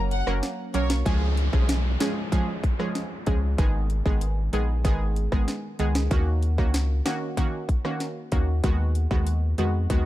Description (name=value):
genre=dancehall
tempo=95 BPM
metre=4/4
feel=straight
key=unclear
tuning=A4 = 441 Hz
part: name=analog pluck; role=accompaniment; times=0.0-10.1 s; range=D#3 to A#4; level=-29 LUFS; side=right 2 dB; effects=chorus, sidechain pumping
part: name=warm analog pad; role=sustained chords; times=0.0-1.0 s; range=F#3 to C#4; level=-41 LUFS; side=right 1 dB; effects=none
part: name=saturated sub bass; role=bass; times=0.0-10.1 s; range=F#1 to E#2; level=-24 LUFS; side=equal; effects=none
part: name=warm studio violin section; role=melody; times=0.1-0.9 s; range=C#5 to F#5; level=-33 LUFS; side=left 1 dB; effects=digital delay
part: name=island pop drum kit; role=drums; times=0.1-10.0 s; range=hi-hat, kick drum, rim click, snare drum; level=-25 LUFS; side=equal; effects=none
part: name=downlifter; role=sound effects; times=1.1-6.1 s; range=none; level=-36 LUFS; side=left 1 dB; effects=none
room=digital ambience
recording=dark, warm production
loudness=-22 LUFS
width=side -15 dB against mid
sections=0.0-1.1 A section; 1.1-10.1 B section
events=break 0.0-1.1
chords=0.0 F#; 1.1 C#; 3.6 G#m; 6.1 D#m7; 8.6 B6/D#